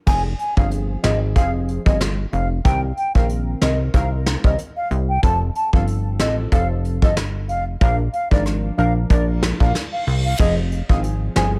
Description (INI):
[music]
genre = dancehall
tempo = 93 BPM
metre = 4/4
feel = swing 56% on 16ths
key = F dorian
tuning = A4 = 440 Hz
[part]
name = mellow baroque flute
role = melody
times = 0.1-11.5 s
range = D5 to A5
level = -27 LUFS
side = equal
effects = digital delay
[part]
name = synth brass stab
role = accompaniment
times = 0.1-11.6 s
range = Eb3 to Bb4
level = -28 LUFS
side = equal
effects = chorus, sidechain pumping
[part]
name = plucky analog bass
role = bass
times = 0.1-11.6 s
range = F1 to C2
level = -24 LUFS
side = equal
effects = none
[part]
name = soft brush drum kit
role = drums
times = 0.1-11.5 s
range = crash cymbal, hi-hat, kick drum, rim click, snare drum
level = -21 LUFS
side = equal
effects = none
[part]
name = reverse cymbal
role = sound effects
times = 9.6-10.4 s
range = none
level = -35 LUFS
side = equal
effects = none
[sound]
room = small room ambience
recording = none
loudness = -19 LUFS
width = mono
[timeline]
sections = 0.1-10.4 A section; 10.4-11.6 B section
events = reverse cymbal 9.6-10.4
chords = 0.1 Fm; 2.7 Cm7; 5.2 F; 7.8 Bb; 10.4 Fm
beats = | 0.07 0.72 1.36 2.01 | 2.65 3.30 3.94 4.59 | 5.23 5.88 6.52 7.17 | 7.81 8.46 9.10 9.75 | 10.39 11.04